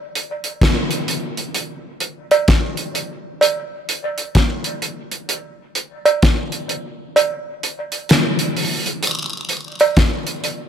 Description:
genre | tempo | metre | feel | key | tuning
reggae | 64 BPM | 4/4 | swing 64% on 16ths | none | none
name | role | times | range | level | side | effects
damped 70s drum kit | drums | 0.2-10.7 s | hi-hat, kick drum, snare drum | -17 LUFS | left 1 dB | none
cowbell and jawbone-type rattle | percussion | 2.3-10.0 s | none | -20 LUFS | right 3 dB | dub echo
room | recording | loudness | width
moderate plate reverb, RT60 3.1 s | none | -17 LUFS | side -8 dB against mid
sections
0.0-10.7 A section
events
kick muted 7.2-9.0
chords
none

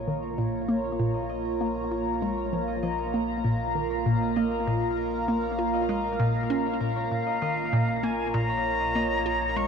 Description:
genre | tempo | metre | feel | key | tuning
ambient, sequencer-driven space music | 98 BPM | 4/4 | straight | Bb minor | A4 = 437 Hz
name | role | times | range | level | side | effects
phased analog pad | sustained chords | 0.0-9.7 s | Bb3 to Bb5 | -28 LUFS | right 1 dB | phaser, chorus
concert harp | arpeggios | 0.0-9.7 s | Bb4 to Bb5 | -40 LUFS | moving between left 8 dB and left 1 dB | auto-pan, ping-pong delay
warm sub bass | bass | 0.0-9.7 s | Bb1 | -40 LUFS | equal | none
hollow square pluck | riff | 0.1-9.7 s | Bb2 to F4 | -28 LUFS | left 1 dB | chorus, cassette tape, ping-pong delay
bright concert flute | melody | 7.1-9.7 s | F5 to Db6 | -28 LUFS | equal | ping-pong delay
room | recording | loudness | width
wet huge ambient reverb, RT60 8.5 s | cassette tape | -24 LUFS | side -6 dB against mid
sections
0.0-9.7 A section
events
fade-in on harp 0.0-9.7; fade-in on sub bass 0.0-9.7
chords
0.0 Bbm

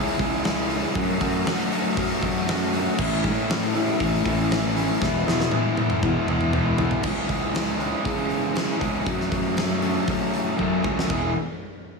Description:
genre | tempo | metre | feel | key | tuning
quiet-loud alternative rock | 118 BPM | 4/4 | straight | unclear | A4 = 440 Hz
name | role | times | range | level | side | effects
fuzz guitar | riff | 0.0-11.3 s | F#2 to G#4 | -23 LUFS | equal | distortion
fuzz fingered electric bass | bass | 0.0-11.3 s | E1 to F#3 | -27 LUFS | left 1 dB | overdrive
huge arena drum kit | drums | 0.2-11.2 s | crash cymbal, hi-hat, kick drum, snare drum, toms | -27 LUFS | equal | none
room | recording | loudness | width
light reverb | studio reverb | -21 LUFS | side -3 dB against mid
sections
0.0-7.0 A section; 7.0-11.1 B section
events
drum fill 5.0-7.0, 10.6-11.1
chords
0.0 C#m; 1.0 F#m; 3.0 A; 5.0 E; 7.0 C#m; 9.1 F#m; 11.1 E

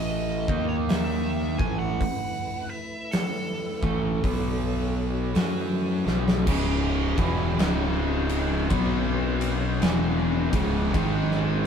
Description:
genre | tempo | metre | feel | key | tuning
stoner and doom metal | 54 BPM | 4/4 | swing 63% on 8ths | C# minor | A4 = 441 Hz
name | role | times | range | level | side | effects
fuzz lead guitar | melody | 0.0-6.0 s | A4 to G#5 | -33 LUFS | right 1 dB | wah, distortion
mellow tonewheel organ | sustained chords | 0.0-11.7 s | D#3 to D#5 | -39 LUFS | left 1 dB | none
fuzz guitar | riff | 0.0-11.7 s | C#2 to F#4 | -28 LUFS | equal | distortion
fuzz fingered electric bass | bass | 0.0-11.7 s | C#1 to F#2 | -28 LUFS | equal | overdrive
oversized low-tuned drum kit | drums | 0.5-11.5 s | crash cymbal, hi-hat, kick drum, ride cymbal, snare drum | -28 LUFS | left 1 dB | none
distorted electric guitar | riff | 6.5-11.7 s | C#2 to B3 | -30 LUFS | equal | overdrive
room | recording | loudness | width
light reverb | band playing live in one room | -23 LUFS | side -7 dB against mid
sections
0.0-6.5 A section; 6.5-11.7 B section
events
drum fill 5.9-6.5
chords
0.3 D#5; 4.2 B5; 5.4 A5; 6.5 C#m; 8.7 B5; 9.8 C#m; 10.9 G#5

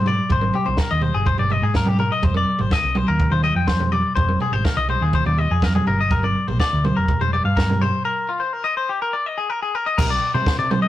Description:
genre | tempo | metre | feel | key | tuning
math rock and midwest emo | 124 BPM | 4/4 | straight | unclear | A4 = 441 Hz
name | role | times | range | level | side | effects
twangy electric guitar | arpeggios | 0.0-10.9 s | F4 to G5 | -22 LUFS | left 4 dB | none
hollow-body short-scale picked electric bass | bass | 0.0-10.8 s | F1 to C3 | -22 LUFS | equal | none
compact cocktail drum kit | drums | 0.1-10.8 s | crash cymbal, kick drum, snare drum, toms | -21 LUFS | right 1 dB | none
room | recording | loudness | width
moderate stone room reverb, RT60 0.9 s | rough rehearsal-room recording | -17 LUFS | side -14 dB against mid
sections
0.0-10.0 A section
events
break 8.1-10.0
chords
0.0 Abmaj7; 2.2 Fm7; 5.9 Gm7; 8.1 Bb7sus4; 10.0 C7sus2

